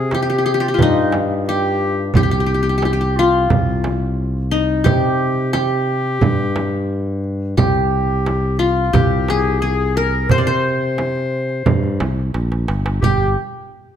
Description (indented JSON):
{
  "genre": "Turkish makam ensemble",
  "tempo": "88 BPM",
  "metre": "4/4",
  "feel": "straight",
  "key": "C makam nihavent",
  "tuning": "A4 = 440 Hz",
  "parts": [
    { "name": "qanun", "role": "melody", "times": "0.0-13.4 s", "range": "Eb4 to D5", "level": "-19 LUFS", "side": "left 2 dB", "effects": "none" },
    { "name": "bright clarinet", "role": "second line", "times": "0.0-13.3 s", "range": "Eb4 to C5", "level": "-24 LUFS", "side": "left 2 dB", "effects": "none" },
    { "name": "modern bright fingered electric bass", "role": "bass", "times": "0.0-13.4 s", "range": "G1 to C3", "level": "-20 LUFS", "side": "equal", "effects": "none" },
    { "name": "darbuka", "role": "percussion", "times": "0.1-13.3 s", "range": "none", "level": "-22 LUFS", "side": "right 3 dB", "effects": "none" },
    { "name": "frame drum", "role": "percussion", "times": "0.1-13.3 s", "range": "none", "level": "-22 LUFS", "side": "right 3 dB", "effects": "none" }
  ],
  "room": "moderate recital hall reverb, RT60 1.7 s",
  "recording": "none",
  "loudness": "-15 LUFS",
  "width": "side -9 dB against mid",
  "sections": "0.0-13.0 A section",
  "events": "drum fill 12.3-13.0",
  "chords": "none"
}